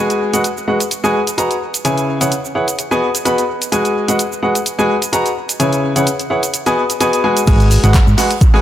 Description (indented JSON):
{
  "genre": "piano house",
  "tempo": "128 BPM",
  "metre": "4/4",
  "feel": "swing 54% on 16ths",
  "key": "G# minor",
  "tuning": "A4 = 439 Hz",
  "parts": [
    { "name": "bright grand piano", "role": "riff", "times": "0.0-8.6 s", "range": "C#3 to B5", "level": "-15 LUFS", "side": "left 1 dB", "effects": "sidechain pumping, dub echo" },
    { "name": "punchy analog drum machine", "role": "drums", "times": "0.1-8.5 s", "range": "crash cymbal, handclaps, hi-hat, shaker", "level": "-21 LUFS", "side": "right 1 dB", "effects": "dub echo" },
    { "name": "hollow-body short-scale fingered electric bass", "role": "bass", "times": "7.5-8.1 s", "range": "G#1 to G#2", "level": "-12 LUFS", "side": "equal", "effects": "sidechain pumping" },
    { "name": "electronic kick drum", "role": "drums", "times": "7.5-8.5 s", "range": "none", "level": "-11 LUFS", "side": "equal", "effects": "none" },
    { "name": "natural country drum kit", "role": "drums", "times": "7.5-8.6 s", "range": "hi-hat, shaker, snare drum", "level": "-30 LUFS", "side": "right 2 dB", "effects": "sidechain pumping on hats, high-pass filter on hats, high-pass filter on snare, sidechain pumping on perc, high-pass filter on perc, high-pass filter on room, dub echo" }
  ],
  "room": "moderate plate reverb, RT60 1.7 s, studio ambience",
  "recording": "echo-heavy mix",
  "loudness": "-13 LUFS",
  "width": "side -12 dB against mid",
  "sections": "0.0-7.5 A section; 7.5-8.6 B section",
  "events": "drop 7.5-8.6",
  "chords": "0.0 G#m7; 1.6 C#m7; 2.8 B6; 3.7 G#m7; 5.4 C#m7; 6.5 B6"
}